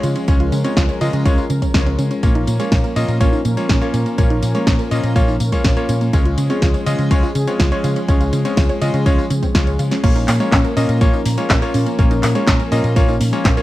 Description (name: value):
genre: italo disco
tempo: 123 BPM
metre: 4/4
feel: straight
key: Bb minor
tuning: A4 = 439 Hz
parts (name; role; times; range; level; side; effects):
- warm analog pad; sustained chords; 0.0-13.6 s; F3 to Bb4; -24 LUFS; equal; chorus
- wide unison pluck; arpeggios; 0.0-13.6 s; Ab3 to Db5; -24 LUFS; right 2 dB; tape echo
- bright electric grand piano; stabs; 0.0-13.6 s; Ab3 to Eb5; -22 LUFS; left 2 dB; tape echo
- hollow-body short-scale fingered electric bass; bass; 0.0-13.6 s; Bb1 to Db3; -19 LUFS; equal; none
- house drum kit; drums; 0.0-13.6 s; crash cymbal, handclaps, hi-hat, snare drum, tambourine; -23 LUFS; equal; studio reverb
- electronic kick drum; drums; 0.3-13.5 s; none; -17 LUFS; equal; studio reverb
room: digital ambience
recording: dry, close 1970s-style studio recording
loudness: -14 LUFS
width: side -16 dB against mid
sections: 0.0-10.0 A section; 10.0-13.6 B section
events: drum fill 9.5-10.0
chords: 0.0 Db; 2.2 Bbm; 6.1 Db; 10.0 Bbm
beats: | 0.28 0.77 1.25 1.74 | 2.23 2.72 3.21 3.69 | 4.18 4.67 5.16 5.64 | 6.13 6.62 7.11 7.60 | 8.08 8.57 9.06 9.55 | 10.04 10.52 11.01 11.50 | 11.99 12.47 12.96 13.45